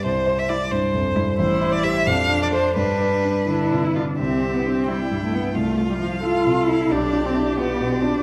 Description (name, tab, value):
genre	quick classical-period movement for piano quartet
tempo	88 BPM (dotted quarters)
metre	6/8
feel	straight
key	C major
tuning	A4 = 441 Hz
part	clear violin	melody	0.0-8.2 s	B4 to G5	-27 LUFS	equal	none
part	warm concert grand piano	accompaniment	0.0-8.2 s	A1 to C5	-26 LUFS	equal	none
part	warm cello	second line	0.5-8.2 s	F3 to F4	-26 LUFS	equal	none
part	clear viola	accompaniment	0.5-8.2 s	D4 to A4	-30 LUFS	equal	none
room	wet recital hall reverb, RT60 1.5 s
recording	none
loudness	-21 LUFS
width	mono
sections	0.0-4.2 A section; 4.2-8.2 B section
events	none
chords	0.0 C; 1.4 Am7; 2.1 Dm7/F; 2.8 G; 4.2 C; 5.6 Fmaj7/C; 6.9 G7/B